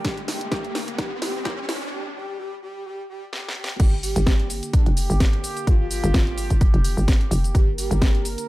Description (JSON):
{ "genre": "bass house", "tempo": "128 BPM", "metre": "4/4", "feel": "swing 55% on 16ths", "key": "G minor", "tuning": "A4 = 441 Hz", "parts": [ { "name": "breathy flute-like synth lead", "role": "melody", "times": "0.0-8.3 s", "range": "D4 to G4", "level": "-32 LUFS", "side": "equal", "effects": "analog chorus, dub echo" }, { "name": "sweeping resonant pad", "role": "sustained chords", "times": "0.0-8.5 s", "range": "D3 to Bb4", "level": "-35 LUFS", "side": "right 2 dB", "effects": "chorus, sidechain pumping" }, { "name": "electronic kick drum", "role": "drums", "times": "0.0-8.1 s", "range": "none", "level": "-19 LUFS", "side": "equal", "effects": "overdrive" }, { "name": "house drum kit", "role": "drums", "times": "0.0-8.5 s", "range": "crash cymbal, hi-hat, shaker, snare drum", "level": "-28 LUFS", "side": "equal", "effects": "overdrive" }, { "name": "riser", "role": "sound effects", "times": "0.0-1.9 s", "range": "none", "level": "-33 LUFS", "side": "equal", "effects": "none" }, { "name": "band-passed chord stab", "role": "stabs", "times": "0.5-1.5 s", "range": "Bb3 to G4", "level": "-40 LUFS", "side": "right 1 dB", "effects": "none" }, { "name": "hollow knocking FM bass", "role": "bass", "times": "3.8-8.4 s", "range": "F1 to G1", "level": "-23 LUFS", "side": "equal", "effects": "overdrive, sidechain pumping" } ], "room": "little or no reverb", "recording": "high-pass filter", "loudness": "-19 LUFS", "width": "side -18 dB against mid", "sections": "0.0-3.8 A section; 3.8-8.5 B section", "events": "build-up 0.0-3.8; drum fill 0.0-1.9, 3.3-3.8; riser 0.0-1.9; filter sweep 0.0-3.8; break 1.9-3.8; drop 3.8-8.5", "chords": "0.0 Gm" }